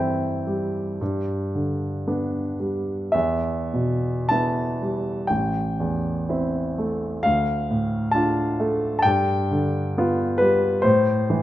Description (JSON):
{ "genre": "classical, romantic nocturne for solo piano", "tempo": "47-69 BPM", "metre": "4/4", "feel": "rubato", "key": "unclear", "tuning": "A4 = 439 Hz", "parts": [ { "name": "warm grand piano", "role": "solo", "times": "0.0-11.4 s", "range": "A1 to A5", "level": "-21 LUFS", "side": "equal", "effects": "none" } ], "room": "moderate recital hall reverb, RT60 1.7 s", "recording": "minimal, uncompressed stereo recording", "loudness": "-21 LUFS", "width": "side -14 dB against mid", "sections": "0.0-11.4 A section", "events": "none", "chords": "0.0 C/G; 1.0 G; 3.1 Em; 5.3 Am7; 7.3 Dm; 9.1 G7; 10.8 Am" }